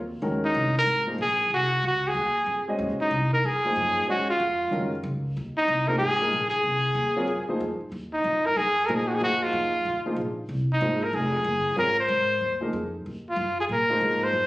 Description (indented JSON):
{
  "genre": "jazz",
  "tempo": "187 BPM",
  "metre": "4/4",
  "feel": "swing 64% on 8ths",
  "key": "Eb dorian",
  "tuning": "A4 = 440 Hz",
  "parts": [
    { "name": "upright bass", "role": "bass", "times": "0.0-14.5 s", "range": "F1 to Bb2", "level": "-31 LUFS", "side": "equal", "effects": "none" },
    { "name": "warm grand piano", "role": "accompaniment", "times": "0.2-14.3 s", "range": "Eb3 to Eb5", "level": "-30 LUFS", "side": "equal", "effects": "none" },
    { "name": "breathy trumpet", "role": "melody", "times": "0.4-14.5 s", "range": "Eb4 to C5", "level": "-23 LUFS", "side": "equal", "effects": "plate reverb" }
  ],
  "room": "moderate large studio reverb, RT60 0.9 s",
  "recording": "recorded on a phone in the room, studio reverb",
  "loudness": "-23 LUFS",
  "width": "side -18 dB against mid",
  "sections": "0.0-14.5 A section",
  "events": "none",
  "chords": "0.2 Ab; 2.8 Ebm69; 5.4 Ab; 7.9 Ebm69; 10.5 Ab; 13.1 Ebm69"
}